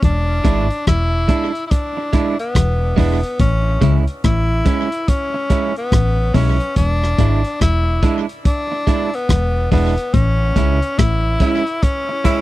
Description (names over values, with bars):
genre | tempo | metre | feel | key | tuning
roots reggae | 71 BPM | 4/4 | swing 62% on 16ths | E mixolydian | A4 = 440 Hz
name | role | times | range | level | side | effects
breathy tenor saxophone | melody | 0.0-12.4 s | B3 to E4 | -21 LUFS | left 2 dB | dub echo
mellow electric guitar | riff | 0.0-11.2 s | E2 to C#3 | -22 LUFS | left 6 dB | none
vintage muted fingered electric bass | bass | 0.0-11.4 s | E1 to C#2 | -17 LUFS | equal | none
crunchy breakbeat drum kit | drums | 0.0-12.4 s | hi-hat, kick drum, rim click | -17 LUFS | equal | none
electric guitar at the edge of break-up | accompaniment | 0.4-12.4 s | G#3 to E4 | -22 LUFS | right 7 dB | dub echo
clear tenor saxophone | second line | 11.4-12.4 s | E4 | -24 LUFS | equal | dub echo
room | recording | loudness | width
little or no reverb | dry, close 1970s-style studio recording | -14 LUFS | side -16 dB against mid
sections
0.0-12.4 A section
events
band accent 10.1-12.4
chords
0.0 E7; 3.4 Amaj7; 6.8 E7; 10.1 Amaj7